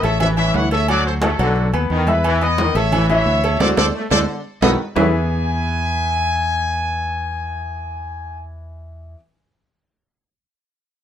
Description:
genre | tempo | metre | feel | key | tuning
latin, salsa | 176 BPM | 4/4 | straight | E major | A4 = 440 Hz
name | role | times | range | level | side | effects
bright trumpet section | melody | 0.0-8.4 s | F#4 to G#5 | -22 LUFS | left 1 dB | plate reverb
bright trombone section | second line | 0.0-5.1 s | D3 to A3 | -24 LUFS | left 1 dB | none
bright grand piano | accompaniment | 0.0-9.1 s | E3 to E6 | -22 LUFS | left 3 dB | none
fingered electric bass | bass | 0.0-9.1 s | A1 to E2 | -21 LUFS | equal | none
agogo bells and timbales | percussion | 0.0-5.0 s | none | -24 LUFS | right 4 dB | none
congas | percussion | 0.0-5.0 s | none | -24 LUFS | equal | none
room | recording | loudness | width
moderate studio ambience, RT60 0.5 s | none | -16 LUFS | side -9 dB against mid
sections
0.0-5.0 A section; 5.0-7.7 B section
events
band accent 3.6-5.0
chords
0.2 A; 0.9 D; 1.6 B; 2.2 E; 2.9 A; 3.6 D7; 4.3 B7; 5.0 E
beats
0.20 0.54 | 0.88 1.22 1.56 1.90 | 2.24 2.58 2.92 3.26 | 3.60 3.94 4.28 4.62 | 4.96 5.30 5.64 5.98 | 6.32 6.66 7.00 7.34

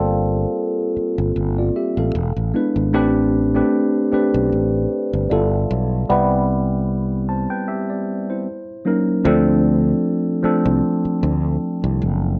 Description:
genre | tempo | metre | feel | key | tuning
R&B, neo-soul | 76 BPM | 4/4 | swing 55% on 16ths | unclear | A4 = 440 Hz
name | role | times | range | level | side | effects
tine electric piano | accompaniment | 0.0-12.4 s | F3 to A5 | -21 LUFS | equal | phaser
fretless electric bass | bass | 0.0-12.3 s | E1 to D2 | -23 LUFS | equal | none
room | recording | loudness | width
moderate studio reverb, RT60 0.8 s | worn, warbling old tape, cassette tape, warbly pitch drift | -19 LUFS | mono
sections
0.0-9.2 A section; 9.2-12.4 B section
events
break 7.7-9.2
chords
0.0 Gm11; 2.1 E7; 2.9 Am11; 5.3 G13; 6.1 Cmaj7; 8.5 Ebm7; 9.2 Dm7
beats
0.56 1.35 2.14 | 2.93 3.72 4.51 5.30 | 6.09 6.88 7.67 8.46 | 9.25 10.04 10.83 11.62

